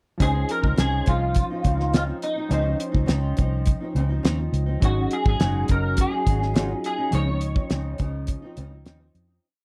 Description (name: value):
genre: indie pop, bedroom pop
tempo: 104 BPM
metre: 4/4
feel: straight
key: Db major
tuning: A4 = 440 Hz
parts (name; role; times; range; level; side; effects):
- electric guitar through a small old amp; melody; 0.2-8.8 s; Eb4 to Db5; -30 LUFS; equal; ensemble chorus, slapback echo
- flamenco guitar; accompaniment; 0.2-9.4 s; Ab2 to Eb4; -34 LUFS; equal; lush chorus, warbly pitch drift
- warm analog keys; accompaniment; 0.2-9.5 s; F3 to Eb5; -35 LUFS; equal; chorus
- vintage muted fingered electric bass; bass; 0.2-9.4 s; Gb1 to F2; -27 LUFS; equal; none
- cloth-damped thuddy drum kit; drums; 0.2-9.3 s; hi-hat, kick drum, snare drum; -24 LUFS; equal; none
room: little or no reverb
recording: dry, close 1970s-style studio recording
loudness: -23 LUFS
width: mono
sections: 0.2-9.4 A section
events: fade-out 7.1-9.4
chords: 0.2 Dbmaj9; 4.8 Ab7sus4; 7.1 Dbmaj9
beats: | 0.20 0.78 1.36 1.94 | 2.51 3.09 3.67 4.24 | 4.82 5.40 5.97 6.55 | 7.13 7.70 8.28 8.86